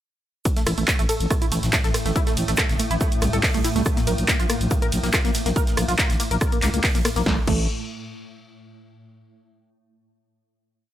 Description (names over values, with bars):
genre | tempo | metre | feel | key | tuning
driving peak-time techno | 141 BPM | 4/4 | straight | unclear | A4 = 445 Hz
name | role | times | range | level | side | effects
swarming drone | drone | 1.1-7.3 s | A2 to A3 | -30 LUFS | left 1 dB | built-in reverb, sidechain pumping
electronic kick drum | drums | 0.5-7.6 s | none | -23 LUFS | equal | none
punchy analog drum machine | drums | 0.5-7.6 s | crash cymbal, handclaps, hi-hat, ride cymbal, rim click, snare drum | -25 LUFS | right 1 dB | overdrive, sidechain pumping on hats, sidechain pumping on cymbals
tight metal drum kit | drums | 0.5-7.3 s | hi-hat, shaker, snare drum | -35 LUFS | right 3 dB | sidechain pumping on hats, high-pass filter on hats, high-pass filter on snare, sidechain pumping on perc, high-pass filter on perc, high-pass filter on room
tight sequenced synth | riff | 0.6-7.7 s | A3 to Bb4 | -27 LUFS | equal | chorus, phaser, tube saturation, sidechain pumping, digital delay
growling FM bass | bass | 0.7-7.7 s | G1 to Db2 | -24 LUFS | equal | sidechain pumping
room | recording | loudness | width
small room ambience | none | -19 LUFS | side -12 dB against mid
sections
0.5-7.3 drop; 7.3-9.0 final chord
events
drop 0.5-7.3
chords
0.5 A5; 3.9 N.C.